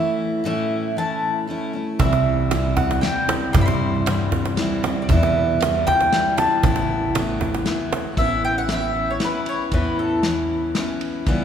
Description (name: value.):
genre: acoustic folk duo or small band.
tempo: 116 BPM.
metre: 3/4.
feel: straight.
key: unclear.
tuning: A4 = 440 Hz.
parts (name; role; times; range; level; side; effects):
mandolin; melody; 0.0-10.2 s; A4 to C6; -23 LUFS; equal; none.
picked steel-string acoustic guitar; accompaniment; 0.0-11.4 s; E2 to E4; -24 LUFS; left 1 dB; none.
upright bass; bass; 2.0-11.4 s; A1 to G2; -25 LUFS; equal; none.
loose indie drum kit; drums; 2.0-11.4 s; kick drum, ride cymbal, snare drum; -27 LUFS; left 1 dB; none.
cajon; percussion; 2.0-8.1 s; none; -24 LUFS; right 3 dB; none.
room: wet cathedral reverb, RT60 4.1 s.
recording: recorded in a church or concert hall.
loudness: -18 LUFS.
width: side -8 dB against mid.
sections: 0.0-8.2 A section; 8.2-11.4 B section.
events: mandolin solo 8.2-11.4.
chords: 0.0 A; 2.0 C; 5.1 Em; 6.6 Asus2; 8.2 Aadd9.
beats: | 0.46 0.97 1.49 | 2.00 2.52 3.03 | 3.54 4.06 4.57 | 5.09 5.60 6.12 | 6.63 7.15 7.66 | 8.18 8.69 9.21 | 9.72 10.24 10.76 | 11.27.